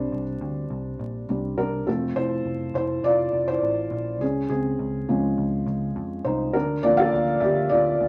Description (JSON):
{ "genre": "piano-driven pop", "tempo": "103 BPM", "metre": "4/4", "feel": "straight", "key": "F major", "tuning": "A4 = 439 Hz", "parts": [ { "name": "felt-muted upright piano", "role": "accompaniment", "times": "0.0-8.1 s", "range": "F3 to F5", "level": "-25 LUFS", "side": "equal", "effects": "none" }, { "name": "vintage muted picked electric bass", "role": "bass", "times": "0.0-8.1 s", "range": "F1 to F2", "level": "-33 LUFS", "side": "equal", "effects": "none" } ], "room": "wet small room reverb, RT60 0.5 s", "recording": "vinyl crackle", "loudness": "-25 LUFS", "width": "mono", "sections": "0.0-1.9 A section; 1.9-8.1 B section", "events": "felt piano solo 0.0-1.9, 1.9-8.1", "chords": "0.0 Csus2; 1.9 F; 4.2 Db; 6.5 Bb/D", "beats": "0.12 0.70 1.29 | 1.87 2.46 3.04 3.63 | 4.21 4.80 5.38 5.97 | 6.55 7.13 7.72" }